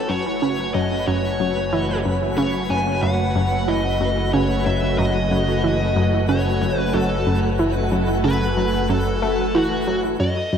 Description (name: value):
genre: ambient, sequencer-driven space music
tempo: 92 BPM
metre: 4/4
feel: straight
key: F# dorian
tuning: A4 = 440 Hz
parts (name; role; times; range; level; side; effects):
- dark smooth lead guitar; melody; 0.0-10.6 s; F#4 to G#5; -25 LUFS; left 1 dB; overdrive, tape echo
- string machine, full ensemble; sustained chords; 0.0-10.6 s; A3 to G#5; -25 LUFS; equal; ensemble chorus
- fat analog bass; bass; 0.0-10.6 s; F#1; -25 LUFS; equal; none
- twinkling granular texture; texture; 0.0-10.6 s; A3 to B5; -31 LUFS; left 2 dB; built-in reverb
- analog pluck; riff; 0.1-10.6 s; F#2 to A3; -22 LUFS; right 1 dB; chorus, tape echo
room: wet spring reverb, RT60 3.0 s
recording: echo-heavy mix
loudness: -18 LUFS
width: side -8 dB against mid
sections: 0.0-10.2 A section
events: fade-in on analog synth bass 0.0-10.2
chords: 0.0 F#madd9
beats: 0.42 1.07 1.72 | 2.38 3.03 3.68 4.33 | 4.98 5.64 6.29 6.94 | 7.59 8.24 8.90 9.55 | 10.20